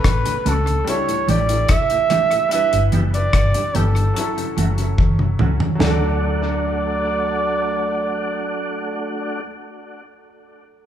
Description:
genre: lovers rock reggae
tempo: 73 BPM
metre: 4/4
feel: straight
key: D major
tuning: A4 = 440 Hz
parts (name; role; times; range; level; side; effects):
- mellow flugelhorn; melody; 0.0-9.4 s; A4 to E5; -21 LUFS; right 3 dB; none
- clear concert grand piano; accompaniment; 0.0-10.9 s; F#3 to B4; -29 LUFS; equal; tape echo
- vintage muted fingered electric bass; bass; 0.0-9.4 s; F#1 to D2; -21 LUFS; left 1 dB; none
- deep reggae drum kit; drums; 0.0-6.0 s; hi-hat, kick drum, rim click, snare drum, toms; -21 LUFS; equal; none
- tonewheel organ; accompaniment; 0.3-9.4 s; D2 to G4; -28 LUFS; left 1 dB; chorus vibrato, slow rotary speaker, tape echo
- mellow electric guitar; stabs; 0.3-9.5 s; E3 to A4; -26 LUFS; right 3 dB; none
room: moderate large studio reverb, RT60 1.4 s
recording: band playing live in one room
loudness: -17 LUFS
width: side -10 dB against mid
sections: 0.0-5.8 A section; 5.8-9.1 B section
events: drum fill 5.0-5.8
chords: 0.0 Dmaj7; 0.9 A7sus4; 2.5 G6; 4.2 F#m7; 5.8 D

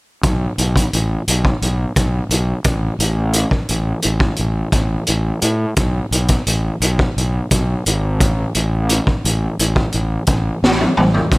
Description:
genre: psychedelic rock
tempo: 87 BPM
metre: 4/4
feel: straight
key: unclear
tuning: A4 = 440 Hz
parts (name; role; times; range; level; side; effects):
- fuzz fingered electric bass; bass; 0.2-11.4 s; G#1 to A2; -18 LUFS; equal; overdrive
- raw garage drum kit; drums; 0.2-11.4 s; hi-hat, kick drum, snare drum, toms; -17 LUFS; equal; none
room: little or no reverb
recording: none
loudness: -15 LUFS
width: side -26 dB against mid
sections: 0.2-11.4 A section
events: drum fill 10.6-11.3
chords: none

